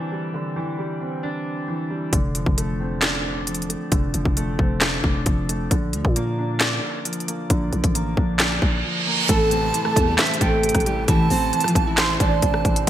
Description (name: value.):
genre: hip hop, trap.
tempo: 134 BPM.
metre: 4/4.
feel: half-time.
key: A phrygian.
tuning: A4 = 436 Hz.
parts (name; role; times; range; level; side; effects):
dark baby grand piano; accompaniment; 0.0-12.9 s; A2 to D5; -26 LUFS; equal; analog chorus, low-pass filter.
growling 808-style bass; bass; 2.1-12.9 s; F1 to Bb2; -25 LUFS; equal; none.
trap drum kit; drums; 2.1-12.9 s; handclaps, hi-hat, kick drum, rim click, snare drum; -21 LUFS; equal; gated reverb.
reverse cymbal and downlifter; sound effects; 8.6-12.9 s; none; -27 LUFS; right 3 dB; none.
fingerpicked steel-string acoustic guitar; melody; 9.3-12.9 s; E3 to D5; -23 LUFS; right 1 dB; low-pass filter.
breathy jazz flute; second line; 9.3-12.9 s; E5 to C6; -24 LUFS; right 6 dB; digital delay.
room: light reverb, small room ambience.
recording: bright 1980s-style digital production.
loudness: -19 LUFS.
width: side -11 dB against mid.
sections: 0.0-9.3 A section; 9.3-12.9 B section.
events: reverse cymbal 8.6-9.3; break 8.8-9.3.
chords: 0.0 Cadd9; 2.1 F6; 5.7 Bb; 9.3 Am.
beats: | 0.34 0.78 1.23 1.68 | 2.13 2.58 3.02 3.47 | 3.92 4.37 4.81 5.26 | 5.71 6.16 6.61 7.05 | 7.50 7.95 8.40 8.84 | 9.29 9.74 10.19 10.63 | 11.08 11.53 11.98 12.43 | 12.87.